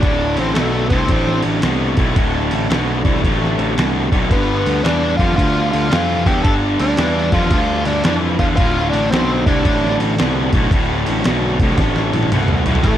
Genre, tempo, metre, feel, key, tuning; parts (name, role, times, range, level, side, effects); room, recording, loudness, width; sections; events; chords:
blues rock power trio and southern rock; 112 BPM; 4/4; swing 65% on 8ths; D mixolydian; A4 = 439 Hz
octave-fuzz lead guitar; melody; 0.0-13.0 s; A3 to A4; -21 LUFS; left 1 dB; distortion
overdriven tonewheel organ; sustained chords; 0.0-13.0 s; C#3 to E5; -28 LUFS; right 4 dB
distorted electric guitar; riff; 0.0-13.0 s; D2 to E3; -19 LUFS; left 1 dB; overdrive
fuzz picked electric bass; bass; 0.0-13.0 s; D1 to F2; -20 LUFS; equal; overdrive
dusty soul sampler-style drum kit; drums; 0.0-13.0 s; kick drum, ride cymbal, snare drum, toms; -19 LUFS; equal
light reverb; -14 LUFS; side -11 dB against mid
0.0-13.0 A section
drum fill 11.8-12.9
0.0 D7; 4.3 G7; 8.6 D7